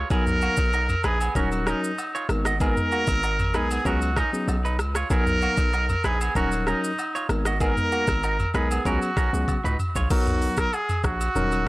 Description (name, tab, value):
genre	afrobeats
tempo	96 BPM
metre	4/4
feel	straight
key	unclear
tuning	A4 = 441 Hz
part	semi-hollow electric guitar	riff	0.0-10.1 s	A#3 to Eb5	-30 LUFS	right 3 dB	tape echo
part	hard-hitting 808-style bass	bass	0.0-11.7 s	Eb1 to Db2	-26 LUFS	equal	none
part	clear trumpet	melody	0.1-11.7 s	Eb4 to Bb4	-27 LUFS	right 1 dB	none
part	tine electric piano	accompaniment	0.1-11.6 s	F#3 to A#4	-28 LUFS	left 2 dB	overdrive
part	afro-pop drum kit	drums	0.1-11.7 s	crash cymbal, hi-hat, kick drum, rim click, shaker, toms	-27 LUFS	equal	none
part	agogo bells and woodblock	percussion	0.1-11.7 s	none	-36 LUFS	equal	none
room	little or no reverb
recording	dry, gritty hardware recording, transformer saturation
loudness	-21 LUFS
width	side -19 dB against mid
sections	0.0-10.1 A section; 10.1-11.7 B section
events	drum fill 9.5-10.1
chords	0.1 Bmaj7; 1.4 Ebm7; 2.3 Abmadd9; 3.9 Db7sus4; 5.1 Bmaj7; 6.4 Ebm7; 7.3 Abmadd9; 8.9 Db7sus4; 10.1 Bmaj7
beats	| 0.10 0.73 1.35 1.98 | 2.60 3.23 3.85 4.48 | 5.10 5.73 6.35 6.98 | 7.60 8.23 8.85 9.48 | 10.10 10.73 11.35